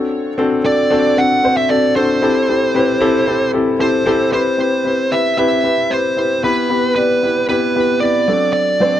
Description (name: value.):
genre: pop.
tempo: 114 BPM.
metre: 4/4.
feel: straight.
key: D mixolydian.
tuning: A4 = 440 Hz.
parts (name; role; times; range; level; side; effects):
dark concert grand piano; accompaniment; 0.0-9.0 s; F#3 to D5; -16 LUFS; left 2 dB; plate reverb.
fuzz lead guitar; melody; 0.7-9.0 s; B4 to F#5; -16 LUFS; right 2 dB; distortion, plate reverb.
room: wet studio ambience, RT60 0.5 s.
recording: none.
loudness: -13 LUFS.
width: side -11 dB against mid.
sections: 0.0-4.3 A section; 4.3-9.0 B section.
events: none.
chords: 0.0 D7; 2.2 Am7; 4.3 Cmaj7; 6.4 Em; 8.3 D7/F#.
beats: | 0.12 0.65 1.17 1.70 | 2.23 2.75 3.28 3.80 | 4.33 4.86 5.38 5.91 | 6.44 6.96 7.49 8.02 | 8.54.